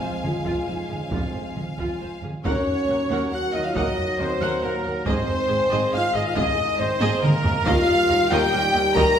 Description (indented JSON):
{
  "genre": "cinematic, epic orchestral film score",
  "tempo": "138 BPM",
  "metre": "3/4",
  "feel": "straight",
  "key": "unclear",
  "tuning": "A4 = 440 Hz",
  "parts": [
    { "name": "warm symphonic violin section", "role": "melody", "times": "0.0-9.2 s", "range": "Bb4 to Bb5", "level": "-31 LUFS", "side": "left 3 dB", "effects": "none" },
    { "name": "clear symphonic violin section", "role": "second line", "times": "0.0-9.2 s", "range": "Bb4 to Bb5", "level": "-29 LUFS", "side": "left 1 dB", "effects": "none" },
    { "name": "clear symphonic viola section", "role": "accompaniment", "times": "0.0-9.2 s", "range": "F4 to Gb5", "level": "-30 LUFS", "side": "right 1 dB", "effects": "none" },
    { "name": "clear trombone section", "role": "sustained chords", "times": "0.0-9.2 s", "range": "Eb3 to Ab3", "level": "-31 LUFS", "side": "right 2 dB", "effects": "none" },
    { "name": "dark French horn section", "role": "sustained chords", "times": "0.0-9.2 s", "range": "Bb3 to Bb4", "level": "-26 LUFS", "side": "left 3 dB", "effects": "none" },
    { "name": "rich studio cello section", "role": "bass", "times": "0.0-9.0 s", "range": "Eb2 to Ab2", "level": "-32 LUFS", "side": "right 3 dB", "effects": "none" },
    { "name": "warm symphonic double bass section", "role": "bass", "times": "0.0-9.0 s", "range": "F1 to Eb2", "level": "-33 LUFS", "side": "right 2 dB", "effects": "none" },
    { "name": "taiko ensemble", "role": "drums", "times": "0.2-9.2 s", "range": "none", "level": "-26 LUFS", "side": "right 1 dB", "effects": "none" },
    { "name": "mellow trumpet section", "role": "stabs", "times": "2.4-9.2 s", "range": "Bb4 to Bb5", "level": "-25 LUFS", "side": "right 1 dB", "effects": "none" }
  ],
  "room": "wet recital hall reverb, RT60 1.3 s",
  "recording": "recorded in a church or concert hall",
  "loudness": "-20 LUFS",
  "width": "side -8 dB against mid",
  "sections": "0.0-2.4 A section; 2.4-9.2 B section",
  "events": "drum fill 7.0-7.7",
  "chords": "0.0 Fm; 2.4 Ebm7; 5.1 Ab; 7.7 Ebadd9"
}